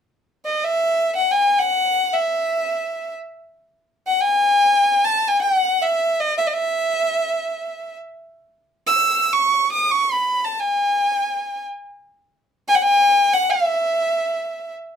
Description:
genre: arabic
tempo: free time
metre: none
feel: none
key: E maqam rast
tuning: A4 = 442 Hz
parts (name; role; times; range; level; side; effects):
- clear violin; melody; 0.5-14.7 s; D5+49c to E6; -17 LUFS; equal; none
room: wet small room reverb, RT60 0.6 s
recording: none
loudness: -17 LUFS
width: side -8 dB against mid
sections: 0.0-15.0 A section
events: none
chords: none

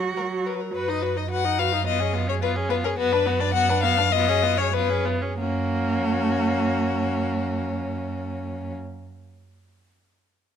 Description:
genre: quick classical-period movement for string quartet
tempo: 92-109 BPM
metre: 2/4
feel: straight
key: F# major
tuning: A4 = 440 Hz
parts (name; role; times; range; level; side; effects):
- warm viola; accompaniment; 0.0-8.7 s; F#3 to F#4; -28 LUFS; right 3 dB; none
- rich cello; bass; 0.0-8.7 s; F#2 to F#4; -28 LUFS; right 4 dB; none
- warm violin; melody; 0.2-8.7 s; F#4 to F#5; -25 LUFS; left 10 dB; none
- rich violin; second line; 0.2-8.7 s; C#4 to D#5; -29 LUFS; left 3 dB; none
room: moderate recital hall reverb, RT60 1.5 s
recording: close, detailed microphones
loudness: -21 LUFS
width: side -8 dB against mid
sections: 0.7-5.4 A section; 5.4-8.0 B section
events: slowing down 2.4-5.4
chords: 0.0 F#; 0.7 B/F#; 1.9 C#7/F#; 3.0 Bm/F#; 4.1 C#7/F#; 5.4 F#

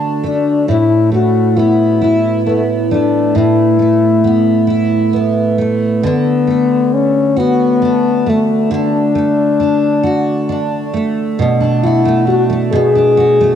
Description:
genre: six-eight pop ballad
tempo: 45 BPM (dotted quarters)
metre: 6/8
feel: straight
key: unclear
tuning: A4 = 440 Hz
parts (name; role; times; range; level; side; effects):
- picked steel-string acoustic guitar; accompaniment; 0.0-13.6 s; A2 to F#4; -14 LUFS; right 3 dB; double-tracked left and right, cassette tape
- mellow French horn; melody; 0.2-13.6 s; A3 to G#4; -13 LUFS; left 5 dB; cassette tape, analog delay
room: moderate lush hall reverb, RT60 2.6 s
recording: home recording on cassette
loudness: -11 LUFS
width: side -9 dB against mid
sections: 0.0-11.4 A section; 11.4-13.6 B section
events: none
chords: 0.0 D; 0.7 Asus2; 6.0 D; 11.4 Bm7

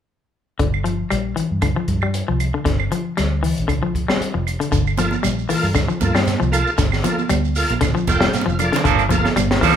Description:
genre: afrobeat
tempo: 116 BPM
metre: 4/4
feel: swing 54% on 16ths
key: G dorian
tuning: A4 = 435 Hz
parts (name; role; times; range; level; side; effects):
- clean electric guitar; arpeggios; 0.6-9.8 s; D3 to G3; -22 LUFS; left 5 dB; warbly pitch drift
- vintage muted fingered electric bass; bass; 0.6-9.6 s; F1 to G2; -23 LUFS; equal; none
- compact cocktail drum kit; drums; 0.6-9.8 s; hi-hat, kick drum, snare drum; -23 LUFS; equal; none
- claves; percussion; 0.7-9.5 s; none; -30 LUFS; right 8 dB; none
- shekere; percussion; 4.7-9.8 s; none; -30 LUFS; right 6 dB; none
- bright tonewheel organ; accompaniment; 5.0-9.8 s; Bb3 to G5; -22 LUFS; right 2 dB; slow rotary speaker, chorus vibrato
- congas; percussion; 5.0-9.8 s; none; -26 LUFS; right 7 dB; none
- electric guitar at the edge of break-up; stabs; 8.8-9.8 s; F3 to A4; -19 LUFS; right 8 dB; none
room: moderate large studio reverb, RT60 0.8 s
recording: band playing live in one room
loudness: -17 LUFS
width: side -9 dB against mid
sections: 0.6-8.9 A section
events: tonewheel organ fill 7.8-8.9; drum fill 8.3-8.9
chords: 0.6 Gm9

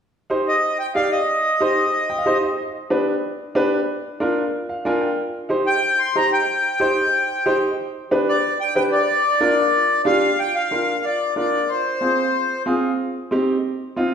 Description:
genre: latin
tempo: 184 BPM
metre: 4/4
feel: straight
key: C minor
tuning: A4 = 441 Hz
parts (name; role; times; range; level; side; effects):
- warm upright piano; accompaniment; 0.3-14.1 s; C4 to Ab5; -21 LUFS; right 1 dB; none
- accordion; melody; 0.5-2.4, 5.7-12.6 s; C5 to C6; -19 LUFS; left 1 dB; none
room: wet recital hall reverb, RT60 1.5 s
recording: recorded in a church or concert hall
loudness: -18 LUFS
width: side -7 dB against mid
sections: 0.0-10.4 A section; 10.4-14.1 B section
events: upright piano fill 1.9-2.6, 4.5-5.2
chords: 0.0 Cm; 2.6 G; 3.9 Bb; 5.2 Cm; 7.8 G; 9.1 Bb; 11.7 Fm; 13.0 Cm

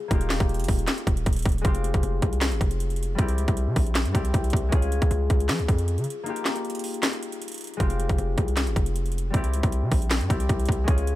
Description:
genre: hip hop, trap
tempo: 156 BPM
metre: 4/4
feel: half-time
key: F minor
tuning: A4 = 440 Hz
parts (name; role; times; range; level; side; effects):
- concert harp; accompaniment; 0.0-11.2 s; G3 to Ab4; -31 LUFS; left 5 dB; low-pass filter
- hard-hitting 808-style bass; bass; 0.1-11.2 s; Eb1 to F3; -25 LUFS; equal; none
- trap drum kit; drums; 0.1-11.2 s; handclaps, hi-hat, kick drum, snare drum; -25 LUFS; equal; overdrive
room: little or no reverb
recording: none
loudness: -22 LUFS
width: side -16 dB against mid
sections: 0.0-11.2 A section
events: break 6.3-7.8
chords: 0.1 Ebadd9; 1.6 Fmadd9; 3.2 C; 4.7 Db; 6.3 Ebadd9; 7.8 Fmadd9; 9.3 C

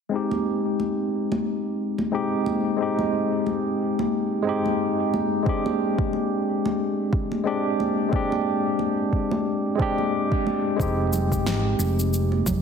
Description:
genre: sunset chillout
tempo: 90 BPM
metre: 4/4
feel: swing 57% on 16ths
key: unclear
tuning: A4 = 441 Hz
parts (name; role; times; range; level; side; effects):
- barky tine electric piano; accompaniment; 0.1-12.6 s; Ab3 to G4; -23 LUFS; left 1 dB; auto-pan, low-pass filter, tape echo
- congas; percussion; 0.3-12.6 s; none; -30 LUFS; right 1 dB; none
- electronic kick drum; drums; 5.5-12.6 s; none; -26 LUFS; equal; none
- hollow-body short-scale fingered electric bass; bass; 10.8-12.6 s; F1 to Ab1; -24 LUFS; equal; none
- electronic cabasa and snare drum; drums; 10.8-12.6 s; none; -30 LUFS; equal; none
room: moderate lush hall reverb, RT60 1.8 s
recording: heavily compressed radio sound, multiband compression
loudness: -22 LUFS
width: side -6 dB against mid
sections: 0.1-10.8 A section; 10.8-12.6 B section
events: filter sweep on tine electric piano 0.1-10.8, 10.8-12.6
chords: 0.1 Abmaj7; 5.5 Abmaj7#11; 10.8 Fm9

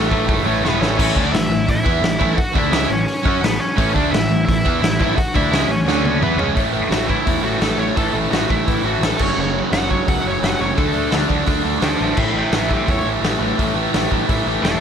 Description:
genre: punk rock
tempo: 171 BPM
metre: 4/4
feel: straight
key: A major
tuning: A4 = 439 Hz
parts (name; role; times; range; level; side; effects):
- high-gain lead guitar; melody; 0.0-14.8 s; A3 to A5; -23 LUFS; equal; distortion
- crunchy overdriven guitar; riff; 0.0-14.8 s; F#2 to F#4; -26 LUFS; equal; none
- distorted electric guitar; riff; 0.0-14.8 s; F#2 to F#4; -24 LUFS; left 15 dB; distortion
- overdriven semi-hollow guitar; riff; 0.0-14.8 s; F#2 to F#4; -22 LUFS; right 14 dB; none
- fuzz picked electric bass; bass; 0.0-14.8 s; E1 to F#2; -24 LUFS; equal; overdrive
- raw garage drum kit; drums; 0.1-14.7 s; crash cymbal, hi-hat, kick drum, snare drum, toms; -21 LUFS; left 1 dB; none
room: little or no reverb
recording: none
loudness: -15 LUFS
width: side -8 dB against mid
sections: 1.0-6.6 A section; 6.6-14.8 B section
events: drum fill 0.6-1.0, 5.9-6.6; lead electric guitar solo 6.6-14.8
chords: 0.0 A; 5.9 D5; 6.2 C#m7; 6.6 A5; 9.2 F#5; 10.8 D5; 12.2 A5

